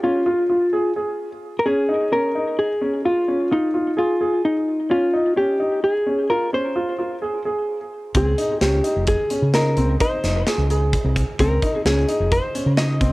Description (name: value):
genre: progressive instrumental, band music in an uneven meter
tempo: 130 BPM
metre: 7/4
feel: straight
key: Db lydian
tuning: A4 = 442 Hz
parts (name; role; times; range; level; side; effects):
- hollow-body jazz guitar; melody; 0.0-13.1 s; Eb4 to Eb5; -20 LUFS; left 1 dB; cassette tape, tape echo
- dark grand piano; arpeggios; 0.0-13.1 s; C4 to Ab4; -24 LUFS; right 1 dB; tape echo
- fingered electric bass; bass; 8.1-13.1 s; F1 to Db3; -20 LUFS; equal; none
- tight metal drum kit; drums; 8.1-13.1 s; hi-hat, kick drum, snare drum; -24 LUFS; equal; cassette tape
room: light reverb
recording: home recording on cassette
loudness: -18 LUFS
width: side -20 dB against mid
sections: 0.0-13.1 A section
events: none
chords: 0.0 Db; 8.1 Ab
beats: 0.26 0.73 1.19 | 1.66 2.12 2.58 3.05 3.51 3.98 4.44 | 4.90 5.37 5.83 6.30 6.76 7.22 7.69 | 8.15 8.61 9.07 9.54 10.00 10.46 10.93 | 11.39 11.85 12.31 12.78